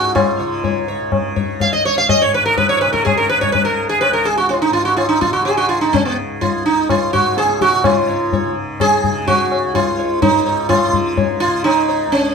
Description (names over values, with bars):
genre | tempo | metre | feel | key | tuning
indian classical, Hindustani | 125 BPM | 4/4 | straight | Db raga khamaj | A4 = 436 Hz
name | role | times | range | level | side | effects
sitar | melody | 0.0-12.3 s | Cb4 to F5 | -15 LUFS | right 2 dB | plate reverb
tanpura | drone | 0.0-12.3 s | Db2 to Db3 | -25 LUFS | equal | none
tabla | percussion | 0.2-12.3 s | none | -19 LUFS | left 5 dB | none
room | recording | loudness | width
moderate studio reverb, RT60 0.5 s | close, detailed microphones | -14 LUFS | side -5 dB against mid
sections
0.0-7.8 A section; 7.8-12.3 B section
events
none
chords
none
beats
| 0.16 0.64 1.12 1.61 | 2.09 2.57 3.05 3.54 | 4.02 4.50 4.98 5.46 | 5.94 6.42 6.89 7.37 | 7.85 8.33 8.80 9.28 | 9.75 10.23 10.70 11.18 | 11.65 12.12